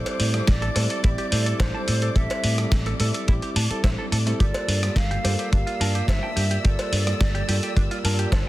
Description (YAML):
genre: nu-disco, nu disco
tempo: 107 BPM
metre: 4/4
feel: straight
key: G dorian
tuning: A4 = 440 Hz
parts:
  - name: mellow hollow silver concert flute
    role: melody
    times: 0.0-8.3 s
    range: C5 to F5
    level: -31 LUFS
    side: right 2 dB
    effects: tape echo
  - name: dark concert grand piano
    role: accompaniment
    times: 0.0-8.5 s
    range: G3 to A5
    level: -30 LUFS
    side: equal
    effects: none
  - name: dark symphonic string section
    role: sustained chords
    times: 0.0-8.5 s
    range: D5 to E6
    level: -36 LUFS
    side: equal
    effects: sidechain pumping
  - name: dusty soul sampler-style drum kit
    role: drums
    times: 0.1-8.4 s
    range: hi-hat, rim click, snare drum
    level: -29 LUFS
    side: equal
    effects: none
  - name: cowbell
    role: percussion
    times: 0.1-8.4 s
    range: none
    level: -34 LUFS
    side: left 1 dB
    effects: none
  - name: vintage muted fingered electric bass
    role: bass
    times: 0.2-8.4 s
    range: G1 to A2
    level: -24 LUFS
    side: equal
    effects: none
  - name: kick drum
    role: drums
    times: 0.5-8.4 s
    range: none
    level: -21 LUFS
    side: equal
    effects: none
  - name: direct-recorded clean electric guitar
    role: riff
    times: 0.6-8.4 s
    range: A3 to A5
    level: -34 LUFS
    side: right 2 dB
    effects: wide subtle chorus
room: little or no reverb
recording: dense, heavily limited modern master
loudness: -20 LUFS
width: side -17 dB against mid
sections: 0.0-8.5 A section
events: none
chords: 0.0 Am7; 4.4 Gm9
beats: 0.48 1.04 1.60 | 2.16 2.72 3.28 3.84 | 4.40 4.96 5.52 6.08 | 6.65 7.21 7.77 8.33